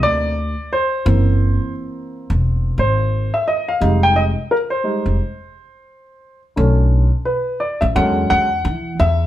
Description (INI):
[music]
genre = hip hop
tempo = 87 BPM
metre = 4/4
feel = swing 59% on 16ths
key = unclear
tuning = A4 = 444 Hz
[part]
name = dark grand piano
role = accompaniment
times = 0.0-9.3 s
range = D3 to G5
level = -18 LUFS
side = equal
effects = none
[part]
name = upright bass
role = bass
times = 0.0-9.3 s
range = E1 to E3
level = -17 LUFS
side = equal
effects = none
[sound]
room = moderate large studio reverb, RT60 1.0 s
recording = band playing live in one room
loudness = -15 LUFS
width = side -13 dB against mid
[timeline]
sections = 0.0-9.3 A section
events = grand piano solo 0.0-9.3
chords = 0.0 Cm7; 1.1 F#7#11; 3.8 Fm9; 6.6 Bm9; 8.0 E13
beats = 0.37 | 1.06 1.75 2.44 3.13 | 3.82 4.51 5.20 5.89 | 6.58 7.26 7.96 8.64